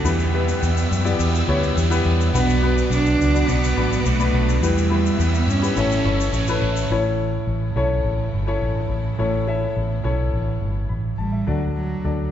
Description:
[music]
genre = piano-driven pop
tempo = 105 BPM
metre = 4/4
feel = straight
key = unclear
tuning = A4 = 444 Hz
[part]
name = warm cello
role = melody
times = 0.0-6.3, 11.2-12.3 s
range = F#3 to D4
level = -24 LUFS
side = right 3 dB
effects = none
[part]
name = clear baby grand piano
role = accompaniment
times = 0.0-12.3 s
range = A2 to B5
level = -24 LUFS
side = left 4 dB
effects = none
[part]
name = rich studio string section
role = sustained chords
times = 0.0-11.4 s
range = C#3 to E6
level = -33 LUFS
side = left 2 dB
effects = none
[part]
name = raw garage guitar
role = riff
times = 0.0-6.9 s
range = E2 to G4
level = -27 LUFS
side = right 4 dB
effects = overdrive, phaser
[part]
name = vintage muted fingered electric bass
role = bass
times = 0.0-12.3 s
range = G1 to G2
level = -21 LUFS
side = right 1 dB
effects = none
[part]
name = tube shaker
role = percussion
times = 0.1-6.9 s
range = none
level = -36 LUFS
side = left 6 dB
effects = none
[sound]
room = wet scoring stage reverb, RT60 1.9 s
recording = recorded in a church or concert hall, nothing above 7.8 kHz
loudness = -18 LUFS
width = side -10 dB against mid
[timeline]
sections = 0.0-6.9 A section; 6.9-11.5 B section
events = none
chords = 0.1 Em; 2.3 Bm; 4.6 Em; 5.8 A; 11.5 D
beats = | 0.05 0.62 1.20 1.76 | 2.34 2.91 3.48 4.05 | 4.62 5.19 5.76 6.33 | 6.90 7.47 8.04 8.62 | 9.19 9.76 10.33 10.90 | 11.47 12.04

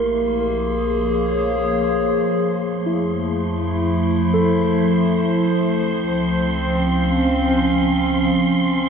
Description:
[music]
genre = ambient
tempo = free time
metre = none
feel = none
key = unclear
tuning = A4 = 440 Hz
[part]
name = warbly tape-like pad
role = sustained chords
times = 0.0-8.9 s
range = F3 to F5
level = -18 LUFS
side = equal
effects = chorus, built-in reverb
[part]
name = muted felt-like synth keys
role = arpeggios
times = 0.0-6.0 s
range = E4 to Bb4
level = -25 LUFS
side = right 1 dB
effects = chorus, ping-pong delay
[part]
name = deep rumbling drone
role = bass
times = 0.0-8.9 s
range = A1 to F2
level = -28 LUFS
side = equal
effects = built-in reverb, tube saturation
[part]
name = wind-like tuned noise texture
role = texture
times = 0.0-8.9 s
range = C6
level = -29 LUFS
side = right 2 dB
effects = built-in reverb
[sound]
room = wet cathedral reverb, RT60 6.1 s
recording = in a vast, echoing space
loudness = -17 LUFS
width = side -6 dB against mid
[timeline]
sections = 0.0-8.9 A section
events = none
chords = 0.0 Bbm7; 2.5 Fmaj7; 5.6 Dbmaj7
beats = free time

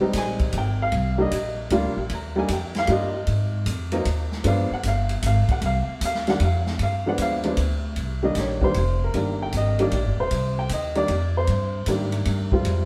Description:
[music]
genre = jazz piano trio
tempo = 153 BPM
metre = 3/4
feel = swing 66% on 8ths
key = C minor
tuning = A4 = 435 Hz
[part]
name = warm upright piano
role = melody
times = 0.0-12.9 s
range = Eb3 to Bb5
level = -27 LUFS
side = equal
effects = none
[part]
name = upright bass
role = bass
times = 0.0-12.9 s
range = Eb1 to Ab2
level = -27 LUFS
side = equal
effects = none
[part]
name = swinging big-band drum kit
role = drums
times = 0.1-12.8 s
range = hi-hat, kick drum, ride cymbal, snare drum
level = -32 LUFS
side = equal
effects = none
[sound]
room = moderate stone room reverb, RT60 1.3 s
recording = band playing live in one room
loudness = -23 LUFS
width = mono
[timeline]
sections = 0.0-8.0 A section; 8.0-12.9 B section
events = upright piano solo 8.0-12.9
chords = 0.0 Fm7 (rootless); 0.9 Cm7; 3.3 Ab5; 4.4 G7(no3); 5.6 Cm; 6.8 G7b9; 8.0 Cm7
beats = 0.14 0.53 | 0.92 1.31 1.71 | 2.10 2.49 2.88 | 3.27 3.66 4.05 | 4.45 4.84 5.23 | 5.62 6.01 6.40 | 6.79 7.18 7.58 | 7.97 8.36 8.75 | 9.14 9.53 9.92 | 10.31 10.70 11.09 | 11.48 11.88 12.27 | 12.65

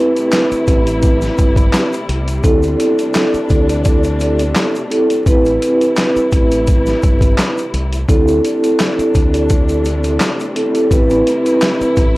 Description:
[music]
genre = hip hop, boom-bap hip-hop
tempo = 85 BPM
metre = 4/4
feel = swing 54% on 16ths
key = A minor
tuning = A4 = 439 Hz
[part]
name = vibraphone with soft mallets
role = accompaniment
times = 0.0-12.2 s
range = C4 to B4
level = -14 LUFS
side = equal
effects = high-pass filter, low-pass filter
[part]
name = dark studio string section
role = sustained chords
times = 0.0-12.2 s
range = C3 to E4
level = -23 LUFS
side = left 1 dB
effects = high-pass filter, low-pass filter
[part]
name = boom bap sampler-style drum kit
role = drums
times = 0.2-12.1 s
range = handclaps, hi-hat, kick drum, snare drum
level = -15 LUFS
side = equal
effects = none
[part]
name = egg shaker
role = percussion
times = 0.2-12.1 s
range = none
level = -38 LUFS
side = left 1 dB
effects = none
[part]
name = deep dub fingered electric bass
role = bass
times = 0.5-12.2 s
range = G1 to D2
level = -19 LUFS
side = equal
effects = transformer saturation
[sound]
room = small room ambience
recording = dry, gritty hardware recording, vinyl crackle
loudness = -12 LUFS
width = side -19 dB against mid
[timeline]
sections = 0.0-12.2 A section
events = none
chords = 0.0 Am7; 2.4 D9sus4; 5.3 Am7; 8.1 D9sus4; 10.9 Am7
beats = 0.32 1.03 1.73 | 2.44 3.15 3.85 4.56 | 5.26 5.97 6.68 7.38 | 8.09 8.79 9.50 10.21 | 10.91 11.62

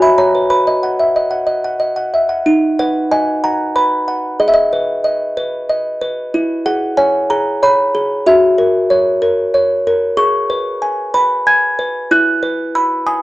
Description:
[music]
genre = classical, lullaby for music box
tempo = 93 BPM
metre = 3/4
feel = straight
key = B major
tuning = A4 = 441 Hz
[part]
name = music box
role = solo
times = 0.0-13.2 s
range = D#4 to G#6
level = -12 LUFS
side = equal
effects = none
[sound]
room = moderate small room reverb, RT60 0.5 s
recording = dry, close 1970s-style studio recording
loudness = -12 LUFS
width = side -17 dB against mid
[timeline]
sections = 0.0-2.5 A section; 2.5-13.2 B section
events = none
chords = 0.0 F#7; 0.5 B; 2.5 B/D#; 4.4 G#m; 6.3 C#m7/E; 8.3 F#7; 10.2 G#m; 12.1 C#m7/E (rootless)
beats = | 0.51 1.16 1.81 | 2.46 3.11 3.75 | 4.40 5.04 5.68 | 6.33 6.97 7.61 | 8.26 8.90 9.54 | 10.19 10.83 11.47 | 12.12 12.76

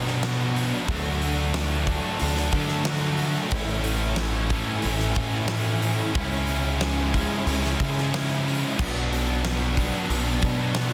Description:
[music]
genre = rock, shoegaze and dream pop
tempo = 91 BPM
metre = 4/4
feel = straight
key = A major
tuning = A4 = 440 Hz
[part]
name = overdriven semi-hollow guitar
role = riff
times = 0.0-10.9 s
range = A2 to E4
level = -33 LUFS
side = equal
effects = reverse reverb
[part]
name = thick fuzz guitar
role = riff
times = 0.0-10.9 s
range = A2 to D4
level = -34 LUFS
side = equal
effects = distortion, ensemble chorus
[part]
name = tight distorted guitar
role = riff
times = 0.0-10.9 s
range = A2 to F#4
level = -32 LUFS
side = equal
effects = distortion
[part]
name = deep dub picked electric bass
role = bass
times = 0.0-10.9 s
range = A1 to D3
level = -30 LUFS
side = equal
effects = none
[part]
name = huge arena drum kit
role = drums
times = 0.1-10.9 s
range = crash cymbal, hi-hat, kick drum, snare drum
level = -32 LUFS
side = equal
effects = none
[sound]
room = small room ambience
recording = dense, heavily limited modern master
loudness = -25 LUFS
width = mono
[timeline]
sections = 0.0-10.9 A section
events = none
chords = 0.0 Bm; 0.9 D; 3.5 A; 6.2 C#m; 8.8 Bm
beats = 0.23 | 0.89 1.54 2.20 2.86 | 3.52 4.18 4.84 5.50 | 6.16 6.81 7.47 8.13 | 8.79 9.45 10.11 10.77

